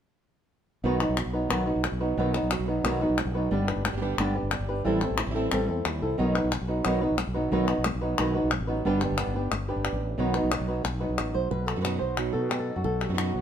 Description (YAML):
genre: flamenco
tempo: 180 BPM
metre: 4/4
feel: straight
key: B phrygian dominant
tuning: A4 = 441 Hz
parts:
  - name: flamenco guitar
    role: melody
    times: 0.8-13.4 s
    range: B2 to C5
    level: -28 LUFS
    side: equal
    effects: none
  - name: flamenco guitar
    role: stabs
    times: 0.8-13.4 s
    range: B2 to G4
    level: -33 LUFS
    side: right 5 dB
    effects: none
  - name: fretless electric bass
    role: bass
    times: 0.8-13.4 s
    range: G1 to B2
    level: -30 LUFS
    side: equal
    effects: none
  - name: palmas hand claps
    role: percussion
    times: 1.0-13.3 s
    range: none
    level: -31 LUFS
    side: left 6 dB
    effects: none
room: light reverb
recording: minimal, uncompressed stereo recording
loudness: -24 LUFS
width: side -9 dB against mid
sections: 0.8-11.5 A section; 11.5-13.4 B section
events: none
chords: 0.8 B; 3.5 G; 4.9 Am7; 6.2 B; 8.8 G; 10.2 B